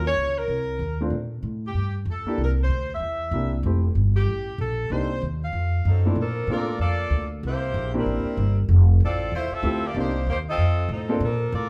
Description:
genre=jazz, big band swing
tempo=190 BPM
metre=4/4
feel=swing 60% on 8ths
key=F major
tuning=A4 = 440 Hz
part: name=warm saxophone section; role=melody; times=0.0-11.7 s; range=F3 to F5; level=-30 LUFS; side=equal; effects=none
part: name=warm upright piano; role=accompaniment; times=0.0-11.2 s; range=Bb2 to A4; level=-30 LUFS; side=equal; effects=none
part: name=upright bass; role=bass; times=0.0-11.7 s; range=F1 to Bb2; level=-25 LUFS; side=equal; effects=none
room=moderate large studio reverb, RT60 1.1 s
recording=band playing live in one room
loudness=-24 LUFS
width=mono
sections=0.0-6.2 A section; 6.2-11.7 B section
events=none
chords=0.5 Cm13; 1.1 Bbmaj7(no3); 2.4 C7; 3.6 Fmaj7; 4.9 Cm7; 5.5 F7b9; 6.2 Bbmaj7; 7.4 C7; 8.7 Fmaj7; 10.0 Cm7; 10.6 F7

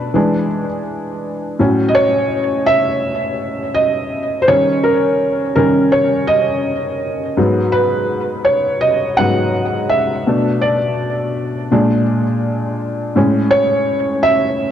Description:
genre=hip hop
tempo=83 BPM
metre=4/4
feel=swing 62% on 16ths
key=unclear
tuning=A4 = 440 Hz
part: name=felt-muted upright piano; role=solo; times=0.0-14.7 s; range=G#2 to F#5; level=-14 LUFS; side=equal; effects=cassette tape, low-pass filter, tape echo
room=moderate spring reverb, RT60 2.2 s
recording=echo-heavy mix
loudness=-14 LUFS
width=side -10 dB against mid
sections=0.0-14.7 A section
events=felt piano solo 0.0-14.7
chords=0.1 E7; 1.6 A6; 4.5 D#7; 7.4 G#m7; 10.3 Bm7; 11.7 A#7; 13.2 Amaj7

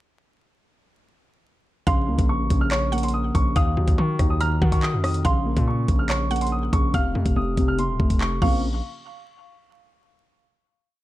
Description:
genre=hip hop, drill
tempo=142 BPM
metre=4/4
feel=half-time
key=Bb harmonic minor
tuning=A4 = 440 Hz
part: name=dark concert grand piano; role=melody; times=1.9-8.6 s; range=C6 to F6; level=-29 LUFS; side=right 1 dB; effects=low-pass filter, ping-pong delay
part: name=mallet-like synth pluck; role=second line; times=1.9-8.6 s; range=Db5 to Bb5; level=-32 LUFS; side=right 2 dB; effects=chorus, ping-pong delay
part: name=dark concert grand piano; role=accompaniment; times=1.9-8.6 s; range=C3 to Gb4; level=-26 LUFS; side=left 2 dB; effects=low-pass filter
part: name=distorted 808-style bass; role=bass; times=1.9-8.8 s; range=Eb1 to Eb3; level=-24 LUFS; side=equal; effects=distortion
part: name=drill drum kit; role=drums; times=1.9-8.5 s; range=crash cymbal, handclaps, hi-hat, kick drum, rim click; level=-23 LUFS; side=equal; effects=vintage 12-bit sampler grit
room=digital ambience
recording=dark, warm production, vinyl crackle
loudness=-19 LUFS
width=side -16 dB against mid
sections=1.9-8.6 hook; 8.6-10.3 final hit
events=none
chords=1.9 Bbmadd9; 3.6 Ebmadd9; 5.2 Bbmadd9; 6.9 F; 8.4 Bbmadd9; 8.6 N.C.

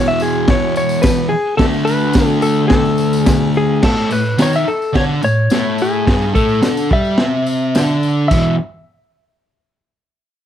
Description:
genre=garage rock duo or trio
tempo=107 BPM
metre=4/4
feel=straight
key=unclear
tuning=A4 = 439 Hz
part: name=clean lap steel guitar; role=melody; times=0.0-8.6 s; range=G#4 to E5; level=-18 LUFS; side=left 2 dB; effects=plate reverb
part: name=fuzz guitar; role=riff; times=0.0-8.5 s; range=E2 to G4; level=-16 LUFS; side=equal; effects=distortion
part: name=tambourine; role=percussion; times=0.2-8.6 s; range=none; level=-34 LUFS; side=left 5 dB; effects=none
part: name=crunchy breakbeat drum kit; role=drums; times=0.5-8.4 s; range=crash cymbal, hi-hat, kick drum, snare drum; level=-16 LUFS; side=equal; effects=none
room=light reverb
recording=none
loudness=-12 LUFS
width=side -10 dB against mid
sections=0.0-3.8 A section; 3.8-8.3 B section; 8.3-10.5 C section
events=none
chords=0.0 E5; 1.6 D5; 3.8 A5; 8.3 E5

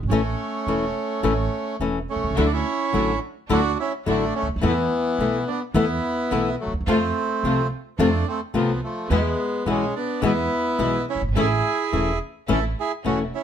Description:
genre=tango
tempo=107 BPM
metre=4/4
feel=rubato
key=A major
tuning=A4 = 439 Hz
part: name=upright bass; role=bass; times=0.0-13.3 s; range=E1 to F2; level=-26 LUFS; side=right 2 dB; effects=none
part: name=bandoneon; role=melody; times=0.1-13.4 s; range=E3 to A4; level=-24 LUFS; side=right 2 dB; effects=none
part: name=flamenco guitar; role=accompaniment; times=0.1-13.2 s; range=B2 to F4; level=-23 LUFS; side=left 4 dB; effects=none
part: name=rich studio string section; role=stabs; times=2.4-13.3 s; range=G#3 to F#4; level=-32 LUFS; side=equal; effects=none
room=moderate studio reverb, RT60 0.8 s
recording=none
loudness=-20 LUFS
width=side -9 dB against mid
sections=0.0-13.4 A section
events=none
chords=0.1 A; 2.4 Dadd9; 4.6 Esus4; 6.9 F; 9.1 E; 11.4 A

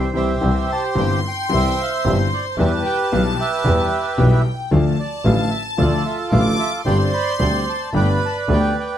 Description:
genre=tango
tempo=112 BPM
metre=4/4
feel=rubato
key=C major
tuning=A4 = 439 Hz
part: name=bandoneon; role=melody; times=0.0-9.0 s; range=F4 to C6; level=-22 LUFS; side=right 3 dB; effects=none
part: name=warm studio violin section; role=second line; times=0.0-8.7 s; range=G5 to D6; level=-27 LUFS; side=left 4 dB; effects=none
part: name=warm grand piano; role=accompaniment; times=0.0-8.7 s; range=G1 to G4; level=-20 LUFS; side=left 2 dB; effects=none
part: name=rich double bass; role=bass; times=0.0-8.7 s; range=G1 to E2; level=-20 LUFS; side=equal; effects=none
room=light reverb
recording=close, detailed microphones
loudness=-16 LUFS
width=side -10 dB against mid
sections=0.4-9.0 A section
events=band accent 0.0-0.4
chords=0.4 C; 2.6 Em; 4.7 Dm; 6.9 Gsus4; 7.9 Gadd9

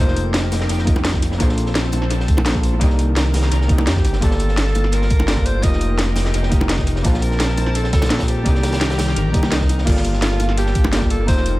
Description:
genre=liquid drum and bass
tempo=170 BPM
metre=4/4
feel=straight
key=G minor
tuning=A4 = 440 Hz
part: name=bright alto saxophone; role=melody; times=0.0-0.3, 3.9-11.6 s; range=Eb4 to Eb5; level=-27 LUFS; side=equal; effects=analog delay
part: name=hollow-body jazz guitar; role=accompaniment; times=0.0-11.6 s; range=Bb3 to A5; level=-26 LUFS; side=equal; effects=analog delay
part: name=lush unison pad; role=sustained chords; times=0.0-11.6 s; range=Eb3 to A5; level=-28 LUFS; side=left 1 dB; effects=chorus
part: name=smooth gliding synth bass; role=bass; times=0.0-11.6 s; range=F1 to F2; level=-19 LUFS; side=equal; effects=none
part: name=crunchy breakbeat drum kit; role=drums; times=0.1-11.5 s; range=hi-hat, snare drum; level=-29 LUFS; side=equal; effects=high-pass filter on hats, high-pass filter on snare, high-pass filter on room, analog delay
part: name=drum and bass drum kit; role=drums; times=0.2-11.5 s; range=crash cymbal, hi-hat, snare drum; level=-25 LUFS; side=equal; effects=analog delay
part: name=bongos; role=percussion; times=0.5-10.9 s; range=none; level=-28 LUFS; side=equal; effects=none
part: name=electronic kick drum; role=drums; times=0.9-11.4 s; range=none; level=-18 LUFS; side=equal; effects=none
room=small room ambience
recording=echo-heavy mix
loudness=-15 LUFS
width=side -18 dB against mid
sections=0.0-11.6 A section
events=none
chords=0.0 F9sus4; 1.4 Bbmaj9; 2.8 Cm9; 4.2 Gm9; 5.6 F9sus4; 7.0 Bbmaj9; 8.5 Cm9; 9.9 Gm9

